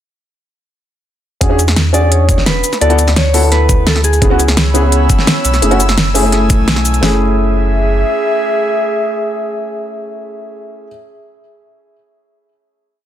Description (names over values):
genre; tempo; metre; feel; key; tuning
liquid drum and bass; 171 BPM; 4/4; straight; F# minor; A4 = 440 Hz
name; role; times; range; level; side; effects
dark concert grand piano; accompaniment; 1.4-10.9 s; A3 to A4; -17 LUFS; left 1 dB; tape echo
saturated sub bass; bass; 1.4-8.0 s; E1 to E2; -14 LUFS; equal; none
pop drum kit; drums; 1.4-7.1 s; kick drum, snare drum; -13 LUFS; equal; none
pop drum kit; drums; 1.4-7.0 s; hi-hat, shaker, snare drum; -15 LUFS; equal; none
mellow electric guitar; melody; 1.9-5.1 s; G#4 to D5; -17 LUFS; equal; ping-pong delay
airy breathy pad; sustained chords; 4.5-10.6 s; A3 to E6; -18 LUFS; equal; chorus
room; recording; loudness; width
moderate recital hall reverb, RT60 1.5 s; dense, heavily limited modern master; -10 LUFS; side -11 dB against mid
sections
1.4-7.0 drop; 7.0-9.8 final chord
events
drop 1.4-7.0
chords
1.4 E13; 2.6 D6; 4.2 C#m7; 5.6 F#m9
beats
| 1.41 1.76 2.12 2.47 | 2.82 3.17 3.52 3.87 | 4.22 4.57 4.92 5.27 | 5.62 5.97 6.33 6.68 | 7.03 7.38 7.73 8.08 | 8.43 8.78 9.13 9.48